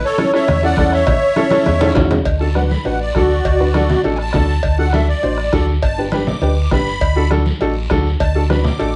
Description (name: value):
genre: latin, cumbia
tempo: 202 BPM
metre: 4/4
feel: straight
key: D major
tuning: A4 = 440 Hz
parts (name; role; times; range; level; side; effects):
- musette accordion; melody; 0.0-9.0 s; F#4 to D6; -22 LUFS; equal; none
- clear upright piano; accompaniment; 0.2-8.9 s; C#4 to C5; -22 LUFS; equal; none
- bombo; percussion; 0.2-8.6 s; none; -24 LUFS; equal; none
- congas; percussion; 0.2-8.8 s; none; -25 LUFS; equal; none
- guiro; percussion; 0.2-9.0 s; none; -36 LUFS; equal; none
- hollow-body short-scale fingered electric bass; bass; 0.5-9.0 s; G1 to E2; -20 LUFS; equal; none
- cowbell and timbales; percussion; 0.5-8.9 s; none; -26 LUFS; equal; none
room: wet small room reverb, RT60 0.5 s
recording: heard from further back in the room, nothing above 11.0 kHz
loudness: -16 LUFS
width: mono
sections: 0.0-2.3 A section; 2.3-9.0 B section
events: drum fill 1.4-2.3; accordion solo 2.3-9.0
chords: 0.0 A; 2.3 D; 5.8 Gadd9; 7.0 D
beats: 0.18 0.48 0.77 | 1.07 1.37 1.66 1.96 | 2.26 2.56 2.85 3.15 | 3.45 3.75 4.04 4.34 | 4.64 4.93 5.23 5.53 | 5.83 6.12 6.42 6.72 | 7.01 7.31 7.61 7.91 | 8.20 8.50 8.80